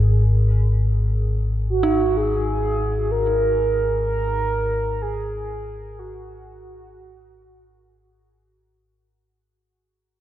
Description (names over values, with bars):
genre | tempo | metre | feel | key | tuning
dark ambient drone | free time | none | none | unclear | A4 = 442 Hz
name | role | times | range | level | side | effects
mellow horn-like synth lead | melody | 0.0-8.4 s | F#4 to A#4 | -24 LUFS | right 2 dB | wide subtle chorus, tape echo
dark detuned synth bell | arpeggios | 0.0-8.9 s | D#4 to A#4 | -29 LUFS | right 1 dB | chorus, tape echo
deep rumbling drone | drone | 0.0-8.9 s | G#1 to G#2 | -21 LUFS | left 1 dB | built-in reverb, phaser, lush chorus
room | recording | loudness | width
wet cathedral reverb, RT60 6.2 s | worn, warbling old tape, cassette tape, warbly pitch drift | -19 LUFS | side -12 dB against mid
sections
0.0-8.8 A section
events
fade-out 0.0-8.8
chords
0.0 G#5